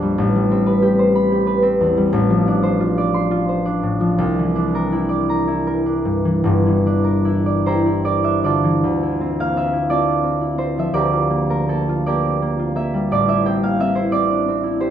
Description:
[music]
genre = classical, solo harp piece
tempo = 50-61 BPM (dotted quarters)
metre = 6/8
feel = rubato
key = D minor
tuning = A4 = 440 Hz
[part]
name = concert harp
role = solo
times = 0.0-14.9 s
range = G1 to C6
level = -16 LUFS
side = equal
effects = none
[sound]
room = light reverb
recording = close, detailed microphones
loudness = -16 LUFS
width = side -10 dB against mid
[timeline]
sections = 0.0-8.8 A section; 8.8-14.9 B section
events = none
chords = 0.2 Am9; 2.1 Dm7/A; 4.2 C9; 6.5 Gm6; 8.8 Dm9; 10.9 Gm7/D; 13.1 Am7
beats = | 0.16 1.15 | 2.14 3.17 | 4.22 5.32 | 6.48 7.64 | 8.81 9.88 | 10.91 12.03 | 13.08 14.11

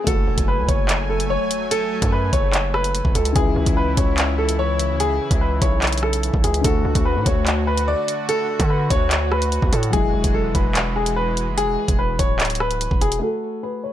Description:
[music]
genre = hip hop, drill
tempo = 146 BPM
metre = 4/4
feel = half-time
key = F# minor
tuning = A4 = 440 Hz
[part]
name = clear upright piano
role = melody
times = 0.0-13.9 s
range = G#4 to D5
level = -23 LUFS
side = left 1 dB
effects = low-pass filter, ping-pong delay
[part]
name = dark concert grand piano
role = accompaniment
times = 0.0-13.9 s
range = C#3 to A4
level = -30 LUFS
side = left 7 dB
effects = low-pass filter
[part]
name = swell and impact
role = sound effects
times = 0.0-1.7 s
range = none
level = -33 LUFS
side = right 1 dB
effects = none
[part]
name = warm analog pad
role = sustained chords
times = 0.1-13.2 s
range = C#3 to G#5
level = -29 LUFS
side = right 1 dB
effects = chorus, tremolo, low-pass filter
[part]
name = distorted 808-style bass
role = bass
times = 0.1-13.2 s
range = D1 to D3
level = -23 LUFS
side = equal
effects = distortion
[part]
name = drill drum kit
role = drums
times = 0.1-13.2 s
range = handclaps, hi-hat, kick drum, rim click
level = -21 LUFS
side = equal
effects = none
[sound]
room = little or no reverb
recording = none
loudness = -17 LUFS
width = side -12 dB against mid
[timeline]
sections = 0.1-13.2 A section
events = impact 0.1-1.7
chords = 0.1 F#madd9; 3.4 C#m; 6.6 D; 9.9 Eadd9; 13.2 F#m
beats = | 0.07 0.48 0.89 1.30 | 1.71 2.12 2.53 2.94 | 3.36 3.77 4.18 4.59 | 5.00 5.41 5.82 6.23 | 6.64 7.05 7.47 7.88 | 8.29 8.70 9.11 9.52 | 9.93 10.34 10.75 11.16 | 11.58 11.99 12.40 12.81 | 13.22 13.63

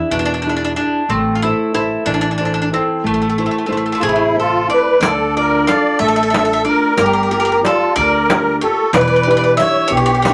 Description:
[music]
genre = italian folk, Italian serenade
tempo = 61 BPM (dotted quarters)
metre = 6/8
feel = straight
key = A harmonic minor, D harmonic minor from 5.0 s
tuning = A4 = 440 Hz
[part]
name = bowl-back mandolin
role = melody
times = 0.0-10.3 s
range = A3 to F5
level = -20 LUFS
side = equal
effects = none
[part]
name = nylon-string guitar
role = accompaniment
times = 0.0-10.3 s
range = B2 to E5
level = -21 LUFS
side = equal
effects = none
[part]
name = upright bass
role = bass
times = 0.1-10.3 s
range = E1 to E2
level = -27 LUFS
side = equal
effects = none
[part]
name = musette accordion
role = second line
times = 4.0-10.3 s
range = E4 to D5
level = -18 LUFS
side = equal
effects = none
[part]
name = riq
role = percussion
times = 5.0-10.3 s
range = none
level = -21 LUFS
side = equal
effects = none
[sound]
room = wet studio ambience, RT60 0.5 s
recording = none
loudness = -15 LUFS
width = mono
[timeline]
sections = 0.0-5.0 A section; 5.0-10.3 B section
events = none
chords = 0.0 E7; 1.1 Am; 5.0 Dm; 7.0 Gm7; 8.9 Em7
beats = 0.11 | 1.09 2.06 | 3.04 4.02 | 5.01 6.00 | 6.98 7.96 | 8.93 9.90

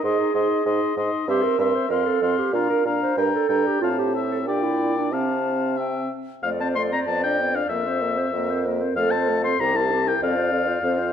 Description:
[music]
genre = quick classical-period movement for wind quintet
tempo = 94 BPM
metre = 2/4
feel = rubato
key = F major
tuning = A4 = 442 Hz
[part]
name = concert flute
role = melody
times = 0.0-11.1 s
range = G4 to C6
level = -30 LUFS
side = left 9 dB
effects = none
[part]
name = warm oboe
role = second line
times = 0.0-11.1 s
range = D5 to C6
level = -26 LUFS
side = left 4 dB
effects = none
[part]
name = dark clarinet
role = accompaniment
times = 0.0-11.1 s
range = C4 to D5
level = -25 LUFS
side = right 5 dB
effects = none
[part]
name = mellow French horn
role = accompaniment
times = 0.0-11.1 s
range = A3 to F4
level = -29 LUFS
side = equal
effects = none
[part]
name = warm bassoon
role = bass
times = 0.0-11.1 s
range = C2 to C3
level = -26 LUFS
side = right 1 dB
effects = none
[sound]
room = moderate recital hall reverb, RT60 1.8 s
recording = dark, warm production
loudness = -20 LUFS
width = side -8 dB against mid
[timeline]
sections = 0.0-6.4 A section; 6.4-11.1 B section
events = none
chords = 0.0 Ab; 1.3 C7/G; 1.9 F; 2.5 Bb; 3.2 Gm; 3.8 F/A; 4.5 Gm/Bb; 5.1 F/C; 6.4 F; 7.1 G7/F; 7.7 C7/F; 9.0 F; 9.6 C7; 10.2 F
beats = | 0.04 0.66 | 1.28 1.90 | 2.54 3.18 | 3.82 4.46 | 5.12 5.78 | 6.43 7.07 | 7.70 8.33 | 8.97 9.61 | 10.23 10.85

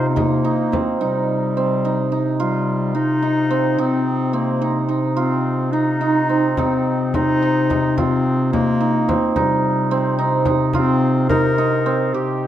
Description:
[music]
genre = contemporary instrumental, chamber music in an uneven meter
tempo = 216 BPM (eighths)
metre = 5/8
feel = straight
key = C minor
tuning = A4 = 438 Hz
[part]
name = mellow clarinet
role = melody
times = 0.0-12.5 s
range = G3 to Bb4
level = -21 LUFS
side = left 2 dB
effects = none
[part]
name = hammered dulcimer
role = arpeggios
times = 0.0-12.5 s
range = C4 to G4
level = -20 LUFS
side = right 4 dB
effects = none
[part]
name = mellow bass clarinet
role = bass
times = 0.0-12.5 s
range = C3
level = -23 LUFS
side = left 3 dB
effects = none
[part]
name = frame drum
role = percussion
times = 0.2-1.0, 6.6-11.7 s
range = none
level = -27 LUFS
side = left 2 dB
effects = none
[sound]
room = light reverb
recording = close, detailed microphones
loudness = -16 LUFS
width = side -11 dB against mid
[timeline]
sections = 0.0-1.0 A section; 1.0-12.2 B section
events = none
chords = 0.0 Cm11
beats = 0.17 0.45 0.73 | 1.01 1.29 1.57 1.85 2.12 | 2.40 2.67 2.95 3.23 3.50 | 3.78 4.05 4.33 4.61 4.88 | 5.16 5.44 5.72 6.00 6.29 | 6.57 6.86 7.14 7.42 7.70 | 7.97 8.25 8.53 8.80 9.08 | 9.36 9.63 9.91 10.19 10.47 | 10.74 11.02 11.30 11.58 11.87 | 12.15 12.43

